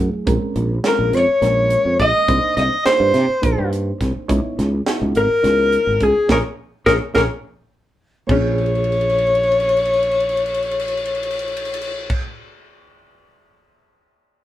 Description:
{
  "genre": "electric jazz fusion",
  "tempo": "210 BPM (eighths)",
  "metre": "7/8",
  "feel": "straight",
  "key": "unclear",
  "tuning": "A4 = 440 Hz",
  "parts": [
    { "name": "bright reed electric piano", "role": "accompaniment", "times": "0.0-12.2 s", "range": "Gb3 to Db5", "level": "-26 LUFS", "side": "right 4 dB", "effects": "overdrive" },
    { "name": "sustaining fretless electric bass", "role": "bass", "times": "0.0-12.2 s", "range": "Ab1 to C3", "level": "-21 LUFS", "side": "equal", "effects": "none" },
    { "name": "tight funk drum kit", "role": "drums", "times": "0.3-12.2 s", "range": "crash cymbal, hi-hat, kick drum, ride cymbal, snare drum", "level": "-25 LUFS", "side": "equal", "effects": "none" },
    { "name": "breathy alto saxophone", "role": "melody", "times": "0.9-12.2 s", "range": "Ab4 to Eb5", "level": "-17 LUFS", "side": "left 1 dB", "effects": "none" },
    { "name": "hollow-body jazz guitar", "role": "second line", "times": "0.9-12.2 s", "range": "Db4 to Eb5", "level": "-23 LUFS", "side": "left 1 dB", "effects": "none" }
  ],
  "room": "wet small room reverb, RT60 0.5 s",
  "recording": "band playing live in one room",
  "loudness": "-16 LUFS",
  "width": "side -13 dB against mid",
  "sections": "0.0-8.3 A section; 8.3-12.3 B section",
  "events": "band accent 6.3-8.3; drum fill 6.6-8.3, 8.6-12.1",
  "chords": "0.3 Bbm9; 2.3 Cm9; 4.3 Dbm9; 6.3 Bbm; 8.3 Bbm7"
}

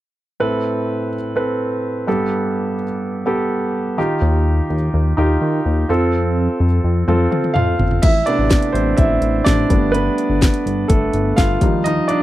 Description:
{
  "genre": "piano-driven pop",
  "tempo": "126 BPM",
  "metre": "4/4",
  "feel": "straight",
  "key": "unclear",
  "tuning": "A4 = 439 Hz",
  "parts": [
    { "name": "warm concert grand piano", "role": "accompaniment", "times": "0.4-12.2 s", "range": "G2 to F5", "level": "-18 LUFS", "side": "right 1 dB", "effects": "none" },
    { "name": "chorused synth bass", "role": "bass", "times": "4.2-12.0 s", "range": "G1 to F3", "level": "-18 LUFS", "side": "left 1 dB", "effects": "none" },
    { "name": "house drum kit", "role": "drums", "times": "7.1-12.2 s", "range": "crash cymbal, hi-hat, kick drum, snare drum, toms", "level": "-17 LUFS", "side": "left 1 dB", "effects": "none" }
  ],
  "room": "little or no reverb",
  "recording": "dry, close 1970s-style studio recording",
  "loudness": "-15 LUFS",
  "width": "side -14 dB against mid",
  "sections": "0.4-8.0 A section; 8.0-12.2 B section",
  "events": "drum fill 7.1-8.0; grand piano solo 8.0-12.2",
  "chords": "0.4 Amadd9; 2.1 Gadd9; 4.0 Ebadd9; 5.9 F; 8.0 Amadd9; 9.7 Gadd9; 11.6 Ebadd9"
}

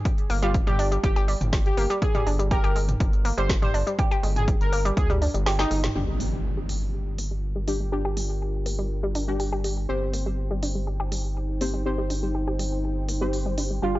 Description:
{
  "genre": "melodic techno",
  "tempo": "122 BPM",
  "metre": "4/4",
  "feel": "straight",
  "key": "G minor",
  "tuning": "A4 = 441 Hz",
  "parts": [
    { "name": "deep house drum kit", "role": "drums", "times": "0.1-13.7 s", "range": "hi-hat, snare drum, toms", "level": "-32 LUFS", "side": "equal", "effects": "none" },
    { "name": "electronic kick drum", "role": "drums", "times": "0.1-5.1 s", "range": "none", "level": "-24 LUFS", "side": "equal", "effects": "none" },
    { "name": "analog pluck", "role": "arpeggios", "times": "0.3-14.0 s", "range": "G3 to G4", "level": "-30 LUFS", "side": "equal", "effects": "chorus, sidechain pumping, tape echo" },
    { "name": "round analog bass", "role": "bass", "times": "0.3-14.0 s", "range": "G1 to D2", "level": "-27 LUFS", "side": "equal", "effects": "sidechain pumping" },
    { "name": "analog synth brass", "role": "melody", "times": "0.4-5.8, 13.8-14.0 s", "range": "Eb4 to C5", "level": "-30 LUFS", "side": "right 1 dB", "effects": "chorus, sidechain pumping, analog delay" },
    { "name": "sweeping resonant pad", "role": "sustained chords", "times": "6.0-14.0 s", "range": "Eb4 to G5", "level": "-36 LUFS", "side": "equal", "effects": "lush chorus, sidechain pumping" },
    { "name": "synth brass stab", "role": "stabs", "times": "6.0-14.0 s", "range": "G3 to C5", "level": "-32 LUFS", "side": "left 2 dB", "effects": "chorus, sidechain pumping, tape echo" },
    { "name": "impact", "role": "sound effects", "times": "6.0-7.9 s", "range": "none", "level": "-33 LUFS", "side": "equal", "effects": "none" }
  ],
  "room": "digital ambience",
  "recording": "dry, gritty hardware recording, transformer saturation, nothing above 7.5 kHz",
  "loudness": "-22 LUFS",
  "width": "side -17 dB against mid",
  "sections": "0.0-6.0 A section; 6.0-14.0 B section",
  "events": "kick drops out 5.5-6.0; drum fill 5.6-6.0; band accent 5.8; impact 6.0-7.9; filter sweep on synth arpeggio sound 6.0-14.0; filter sweep on synth stab 6.0-14.0",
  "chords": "0.0 G5; 6.0 Gm7; 9.9 Cm/G"
}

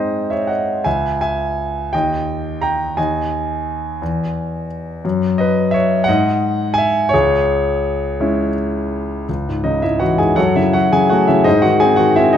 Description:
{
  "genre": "classical, lyrical solo piano",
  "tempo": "56 BPM (dotted quarters)",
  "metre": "6/8",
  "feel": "rubato",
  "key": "C# minor",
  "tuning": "A4 = 440 Hz",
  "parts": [
    { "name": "clear grand piano", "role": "solo", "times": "0.0-12.4 s", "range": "C#2 to A#5", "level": "-14 LUFS", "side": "equal", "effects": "none" }
  ],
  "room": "moderate recital hall reverb, RT60 1.3 s",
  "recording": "minimal, uncompressed stereo recording",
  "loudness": "-15 LUFS",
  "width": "side -9 dB against mid",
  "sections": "0.0-9.3 A section; 9.3-12.4 B section",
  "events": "none",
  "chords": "0.0 G#; 0.9 C#m; 1.9 D#; 3.0 N.C.; 4.0 E; 5.0 F#5; 6.1 G#5; 7.1 C#m; 10.4 F#m; 11.5 G#"
}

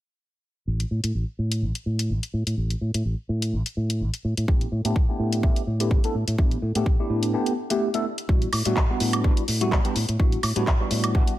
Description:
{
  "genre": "filtered disco house",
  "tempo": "126 BPM",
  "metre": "4/4",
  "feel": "swing 54% on 16ths",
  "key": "unclear",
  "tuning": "A4 = 442 Hz",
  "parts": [
    { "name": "modern bright fingered electric bass", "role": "bass", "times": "0.7-11.2 s", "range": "A1 to A2", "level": "-25 LUFS", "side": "equal", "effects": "sidechain pumping, low-pass filter" },
    { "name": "house drum kit", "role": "drums", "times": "0.8-11.4 s", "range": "handclaps, hi-hat, woodblock", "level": "-29 LUFS", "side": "equal", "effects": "small room ambience" },
    { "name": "tine electric piano", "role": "accompaniment", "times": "4.5-11.3 s", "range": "G3 to A4", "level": "-26 LUFS", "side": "equal", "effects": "fast stereo tremolo, phaser, sidechain pumping, low-pass filter" },
    { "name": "electronic kick drum", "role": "drums", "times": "4.5-11.3 s", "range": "none", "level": "-21 LUFS", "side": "equal", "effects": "small room ambience" }
  ],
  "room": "little or no reverb",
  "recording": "none",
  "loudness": "-22 LUFS",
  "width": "side -14 dB against mid",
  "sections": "0.7-8.3 A section; 8.3-11.4 B section",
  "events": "filter sweep 0.7-8.3; break 7.3-8.3",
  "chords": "0.7 N.C.; 4.2 A9sus4; 8.3 Em9/A"
}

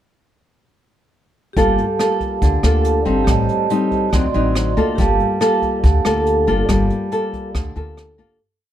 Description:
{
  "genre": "bossa nova",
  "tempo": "140 BPM",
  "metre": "4/4",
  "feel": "straight",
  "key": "G minor",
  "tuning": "A4 = 440 Hz",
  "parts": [
    { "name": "vibraphone with medium mallets", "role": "accompaniment", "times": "1.5-8.4 s", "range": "F#4 to C6", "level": "-21 LUFS", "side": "right 6 dB", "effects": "none" },
    { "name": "nylon-string guitar", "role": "accompaniment", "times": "1.6-8.4 s", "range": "A2 to A4", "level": "-19 LUFS", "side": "left 2 dB", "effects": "none" },
    { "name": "upright bass", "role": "bass", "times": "1.6-8.4 s", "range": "G1 to D2", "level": "-19 LUFS", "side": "equal", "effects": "none" },
    { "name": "jazz brush drum kit", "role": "drums", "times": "1.6-8.3 s", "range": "hi-hat, kick drum, rim click", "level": "-23 LUFS", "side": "equal", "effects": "none" }
  ],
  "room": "little or no reverb",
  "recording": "none",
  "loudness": "-15 LUFS",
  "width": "side -11 dB against mid",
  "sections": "1.6-8.4 A section",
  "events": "fade-out 6.7-8.4",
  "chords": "1.6 Gm9; 3.3 Am7b5; 4.1 D7b9; 5.0 Gm9"
}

